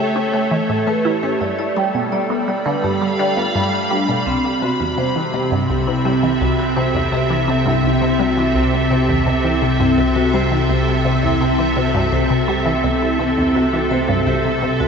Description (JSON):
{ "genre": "ambient, sequencer-driven space music", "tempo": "84 BPM", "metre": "4/4", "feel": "straight", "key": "G lydian, C major from 4.3 s", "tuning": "A4 = 437 Hz", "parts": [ { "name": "evolving wavetable pad", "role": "sustained chords", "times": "0.0-14.9 s", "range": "C3 to B5", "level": "-18 LUFS", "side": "equal", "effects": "ensemble chorus, built-in reverb, shimmer reverb" }, { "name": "vibraphone with medium mallets", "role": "arpeggios", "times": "0.0-14.9 s", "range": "G3 to G5", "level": "-22 LUFS", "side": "right 1 dB", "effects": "auto-pan, ping-pong delay, shimmer reverb" }, { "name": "resonant blip pluck", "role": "riff", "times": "0.0-14.9 s", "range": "C2 to E4", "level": "-21 LUFS", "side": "left 1 dB", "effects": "phaser, lush chorus, ping-pong delay, shimmer reverb" }, { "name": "bubbling stepped-filter texture", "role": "texture", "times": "0.0-14.9 s", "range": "A3 to A4", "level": "-31 LUFS", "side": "right 1 dB", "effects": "none" }, { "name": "round analog bass", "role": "bass", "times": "4.3-14.9 s", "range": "C2", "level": "-26 LUFS", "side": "equal", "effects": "none" } ], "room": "wet lush hall reverb, RT60 2.9 s", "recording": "dreamy mix soaked in reverb, nothing above 7.7 kHz", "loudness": "-15 LUFS", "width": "side -6 dB against mid", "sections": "0.0-4.3 A section; 4.3-14.9 B section", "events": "none", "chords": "0.0 A; 1.4 G7; 4.3 C6", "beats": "0.69 | 1.41 2.12 2.84 3.55 | 4.27 4.98 5.69 6.41 | 7.12 7.84 8.55 9.27 | 9.98 10.69 11.41 12.12 | 12.84 13.55 14.27" }